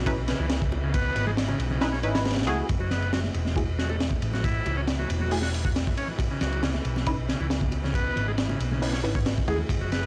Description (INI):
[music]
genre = breakbeat, breaks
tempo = 137 BPM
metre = 4/4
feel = straight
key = F# minor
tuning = A4 = 439 Hz
[part]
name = thumb-piano-like synth pluck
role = melody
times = 0.0-0.6 s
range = F#4 to B4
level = -40 LUFS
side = equal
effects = chorus, AM radio sound, tape echo
[part]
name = warm studio string section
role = sustained chords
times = 0.0-10.1 s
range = A2 to G#4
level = -40 LUFS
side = equal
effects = sidechain pumping
[part]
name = hollow-body short-scale picked electric bass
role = bass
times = 0.0-10.1 s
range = E1 to D#2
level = -31 LUFS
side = equal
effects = tube saturation
[part]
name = filtered dub chord stab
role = stabs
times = 0.1-10.1 s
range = A3 to B4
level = -33 LUFS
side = equal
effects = chorus, cassette tape, tape echo
[part]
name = crunchy breakbeat drum kit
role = drums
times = 0.1-10.1 s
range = hi-hat, kick drum, ride cymbal, snare drum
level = -30 LUFS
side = equal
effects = none
[part]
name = combo organ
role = riff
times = 0.3-10.1 s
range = C#3 to F#4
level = -35 LUFS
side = equal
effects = vintage 12-bit sampler grit, tape echo
[part]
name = bongos and congas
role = percussion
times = 0.4-10.0 s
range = none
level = -41 LUFS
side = equal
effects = none
[sound]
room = light reverb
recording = dry, gritty hardware recording, cassette tape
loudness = -26 LUFS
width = mono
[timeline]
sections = 0.0-2.7 A section; 2.7-10.1 B section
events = drop 0.0-2.7; filter sweep on synth stab 2.7-10.1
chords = 0.0 C#m9; 2.7 F#m9; 6.2 C#m9